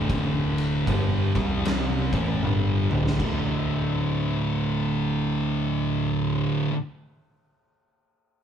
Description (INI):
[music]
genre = stoner and doom metal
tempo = 77 BPM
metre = 4/4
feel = swing 62% on 8ths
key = unclear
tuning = A4 = 438 Hz
[part]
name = thick fuzz guitar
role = riff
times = 0.0-6.7 s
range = D2 to C4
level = -26 LUFS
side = left 5 dB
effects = distortion
[part]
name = thick fuzz guitar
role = riff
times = 0.0-6.7 s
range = D2 to C4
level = -28 LUFS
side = right 8 dB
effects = distortion
[part]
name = growling picked electric bass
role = bass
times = 0.0-6.5 s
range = D1 to C2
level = -31 LUFS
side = right 1 dB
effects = overdrive, tube saturation
[part]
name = oversized low-tuned drum kit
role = drums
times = 0.1-3.4 s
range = crash cymbal, kick drum, ride cymbal, snare drum, toms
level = -28 LUFS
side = equal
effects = none
[sound]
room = light reverb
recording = band playing live in one room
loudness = -22 LUFS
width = side -8 dB against mid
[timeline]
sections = 0.0-3.2 A section; 3.2-6.3 B section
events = drum fill 2.4-3.2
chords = 0.0 D5